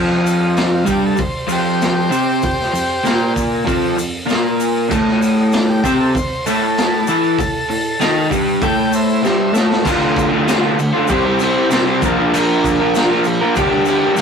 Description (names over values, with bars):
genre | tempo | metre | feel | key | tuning
garage rock duo or trio | 97 BPM | 4/4 | straight | unclear | A4 = 440 Hz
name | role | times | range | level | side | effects
crunchy overdriven guitar | riff | 0.0-14.2 s | D2 to C5 | -15 LUFS | equal | none
raw garage drum kit | drums | 0.1-14.2 s | crash cymbal, hi-hat, kick drum, snare drum | -21 LUFS | equal | none
tube shaker | percussion | 0.3-14.2 s | none | -34 LUFS | left 6 dB | none
overdriven combo organ | melody | 0.6-9.5 s | D4 to G5 | -21 LUFS | equal | none
room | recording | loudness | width
moderate studio reverb, RT60 0.5 s | rough rehearsal-room recording, warm saturation | -13 LUFS | side -6 dB against mid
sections
0.0-9.9 A section; 9.9-14.2 B section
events
drum fill 9.2-9.9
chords
0.0 F5; 4.9 A5; 9.9 Dm; 11.1 C; 12.0 Bb; 13.6 Gm